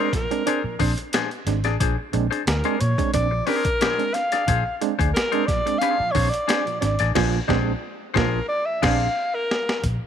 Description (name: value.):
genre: funk.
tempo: 90 BPM.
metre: 4/4.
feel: straight.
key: Bb mixolydian.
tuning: A4 = 443 Hz.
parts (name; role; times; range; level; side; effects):
breathy alto saxophone; melody; 0.0-9.8 s; Bb4 to F5; -24 LUFS; left 1 dB; none.
semi-hollow electric guitar; accompaniment; 0.0-9.1 s; D4 to D5; -27 LUFS; left 13 dB; lush chorus.
bright reed electric piano; stabs; 0.0-9.1 s; Bb2 to D4; -27 LUFS; right 13 dB; fast tremolo.
breakbeat sampler-style drum kit; drums; 0.1-10.0 s; crash cymbal, hi-hat, kick drum, snare drum; -26 LUFS; equal; none.
vintage muted fingered electric bass; bass; 0.6-10.0 s; Ab1 to Bb2; -24 LUFS; equal; none.
room: light reverb.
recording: 1960s-style stereo with parts hard left and right.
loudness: -20 LUFS.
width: side -8 dB against mid.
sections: 0.0-9.8 A section.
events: alto saxophone solo 0.0-9.8; band accent 7.2-9.8; drum fill 9.2-9.8.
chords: 0.0 Bb9.